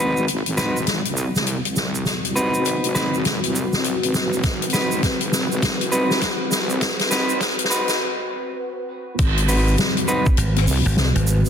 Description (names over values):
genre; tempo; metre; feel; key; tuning
glitch hop; 101 BPM; 4/4; swing 62% on 16ths; unclear; A4 = 440 Hz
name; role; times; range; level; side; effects
dark analog pad; sustained chords; 0.0-11.5 s; B#3 to B4; -27 LUFS; left 1 dB; chorus, sidechain pumping
clean electric guitar; stabs; 0.0-10.3 s; B#3 to B4; -24 LUFS; equal; sidechain pumping, digital delay
wobble bass; bass; 0.0-11.1 s; F#1 to B#1; -25 LUFS; equal; chorus, high-pass filter
tube shaker; percussion; 0.2-11.5 s; none; -29 LUFS; right 5 dB; none
soft-mallet drum kit; drums; 0.3-11.2 s; crash cymbal, hi-hat, snare drum; -22 LUFS; left 2 dB; soft clipping on snare
electronic kick drum; drums; 4.4-10.4 s; none; -20 LUFS; equal; none
slap bass; bass; 10.4-11.4 s; G#1; -18 LUFS; equal; tube saturation
room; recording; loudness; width
light reverb, small room ambience; dense, heavily limited modern master, high-pass filter; -18 LUFS; side -8 dB against mid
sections
0.0-9.2 A section; 9.2-11.5 B section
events
build-up 0.0-9.2; drum fill 0.0-8.0; break 8.0-9.2; drop 9.2-11.5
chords
0.0 G#7#9